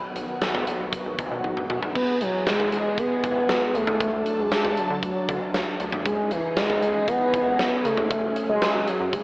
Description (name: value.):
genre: synth-pop.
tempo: 117 BPM.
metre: 4/4.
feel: straight.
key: E major.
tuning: A4 = 440 Hz.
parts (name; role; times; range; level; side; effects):
string machine, cellos; sustained chords; 0.0-9.2 s; D#3 to A5; -30 LUFS; equal; phaser, ensemble chorus.
rubbery square bass; bass; 0.2-9.2 s; E1 to D3; -33 LUFS; equal; none.
huge arena drum kit; drums; 0.2-9.2 s; crash cymbal, hi-hat, kick drum, snare drum, toms; -27 LUFS; equal; none.
expressive portamento lead; melody; 2.0-9.2 s; E3 to B3; -23 LUFS; equal; chorus.
room: moderate plate reverb, RT60 1.3 s, small room ambience.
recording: AM radio sound, faint mains hum.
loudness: -21 LUFS.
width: side -25 dB against mid.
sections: 0.0-2.0 A section; 2.0-9.2 B section.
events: drum fill 1.4-2.0.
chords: 0.0 B; 2.0 E; 4.0 D; 6.1 C#madd9; 8.1 F#sus2.